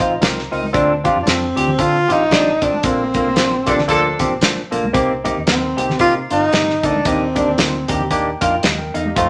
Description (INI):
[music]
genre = uptempo 1960s-style soul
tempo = 114 BPM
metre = 4/4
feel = swing 59% on 8ths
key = unclear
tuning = A4 = 440 Hz
[part]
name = barky tine electric piano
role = accompaniment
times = 0.0-9.3 s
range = A3 to Bb5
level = -24 LUFS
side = equal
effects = none
[part]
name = electric guitar through a small old amp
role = riff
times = 0.0-9.3 s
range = Bb3 to G4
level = -23 LUFS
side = equal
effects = none
[part]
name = vintage muted fingered electric bass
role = bass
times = 0.0-9.3 s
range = G1 to D3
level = -30 LUFS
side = equal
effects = none
[part]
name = warm soul drum kit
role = drums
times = 0.0-9.3 s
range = hi-hat, kick drum, snare drum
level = -22 LUFS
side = equal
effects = none
[part]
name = congas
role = percussion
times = 0.2-9.3 s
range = none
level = -31 LUFS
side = equal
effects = none
[part]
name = breathy tenor saxophone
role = melody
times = 1.2-8.1 s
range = C4 to F4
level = -20 LUFS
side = equal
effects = none
[part]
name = warm horn section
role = second line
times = 3.7-4.3 s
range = F3 to A4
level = -20 LUFS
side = equal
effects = none
[sound]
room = wet studio reverb, RT60 0.7 s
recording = none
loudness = -17 LUFS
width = mono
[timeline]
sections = 0.0-9.3 A section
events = tine electric piano fill 0.0-0.7, 7.6-9.2; band accent 2.8-4.9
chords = 0.0 F7sus4; 0.7 Dm7; 2.8 Bbmaj7; 4.9 Cm7; 7.1 Ebmaj7